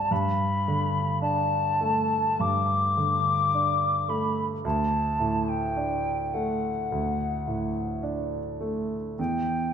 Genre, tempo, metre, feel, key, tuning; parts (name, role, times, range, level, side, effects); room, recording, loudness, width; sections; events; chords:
classical, impressionist duo for flute and grand piano; 53 BPM; 4/4; rubato; A4 = 440 Hz
mellow hollow silver concert flute; melody; 0.0-9.7 s; F#5 to D6; -26 LUFS; left 3 dB
warm grand piano; accompaniment; 0.0-9.7 s; D2 to D4; -27 LUFS; right 2 dB
wet scoring stage reverb, RT60 1.7 s; -24 LUFS; side -8 dB against mid
0.0-9.7 A section
0.1 Gadd9; 4.6 D; 9.2 Em